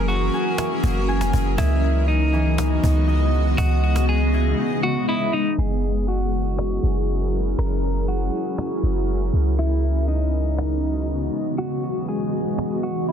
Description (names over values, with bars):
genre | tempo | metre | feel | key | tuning
hip hop, atmospheric cloud-rap | 120 BPM | 4/4 | half-time | unclear | A4 = 440 Hz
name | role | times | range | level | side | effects
clean electric guitar | melody | 0.0-13.1 s | D#4 to A#4 | -27 LUFS | equal | phaser, low-pass filter, ping-pong delay
granular cloud pad | sustained chords | 0.0-13.1 s | C#3 to D#5 | -24 LUFS | equal | built-in reverb
Celtic harp | arpeggios | 0.0-7.9 s | E3 to G#5 | -30 LUFS | left 2 dB | low-pass filter, ping-pong delay
clean 808-style bass | bass | 0.0-11.3 s | F#1 to C#2 | -21 LUFS | equal | none
cajon | drums | 0.1-12.7 s | none | -29 LUFS | equal | none
room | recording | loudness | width
small room reverb | dense, heavily limited modern master, low-pass filter | -19 LUFS | side -8 dB against mid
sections
0.0-5.6 A section; 5.6-13.1 B section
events
break 4.6-5.6; filter sweep 5.6-13.1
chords
0.0 F#9; 1.6 C#m11; 5.6 F#9; 9.6 C#m11